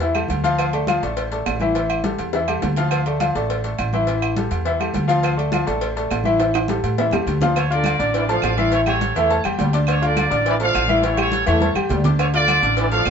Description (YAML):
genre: latin, salsa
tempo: 207 BPM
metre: 4/4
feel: straight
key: D harmonic minor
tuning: A4 = 441 Hz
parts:
  - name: bright upright piano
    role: accompaniment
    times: 0.0-13.1 s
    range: E3 to F6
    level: -21 LUFS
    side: left 2 dB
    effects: none
  - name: upright bass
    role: bass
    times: 0.0-13.1 s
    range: A1 to A2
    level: -23 LUFS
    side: equal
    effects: none
  - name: cowbell and bongos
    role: percussion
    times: 0.0-13.1 s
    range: none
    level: -30 LUFS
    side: left 4 dB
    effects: none
  - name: agogo bells and timbales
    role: percussion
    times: 0.1-13.1 s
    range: none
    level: -27 LUFS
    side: right 7 dB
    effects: none
  - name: claves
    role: percussion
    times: 0.1-13.1 s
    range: none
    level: -31 LUFS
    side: right 8 dB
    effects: none
  - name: congas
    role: percussion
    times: 0.1-13.1 s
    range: none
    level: -29 LUFS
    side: equal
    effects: none
  - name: brilliant trumpet section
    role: melody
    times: 7.6-13.1 s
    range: A4 to F5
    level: -22 LUFS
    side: right 1 dB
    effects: none
  - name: mellow trombone section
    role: second line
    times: 7.7-13.1 s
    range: D3 to A3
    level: -25 LUFS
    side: right 2 dB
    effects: none
room: wet studio reverb, RT60 0.8 s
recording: band playing live in one room, nothing above 7.8 kHz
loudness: -17 LUFS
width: side -7 dB against mid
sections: 0.0-7.6 A section; 7.6-13.1 B section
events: drum fill 2.3-2.9, 6.4-7.6, 11.6-12.2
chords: 0.0 A5; 0.6 Dm; 1.8 A5; 2.9 Dm; 4.1 A5; 5.2 Dm; 6.4 A5; 7.6 Dm; 8.7 A7; 9.9 Dm; 11.0 A7; 12.2 Dm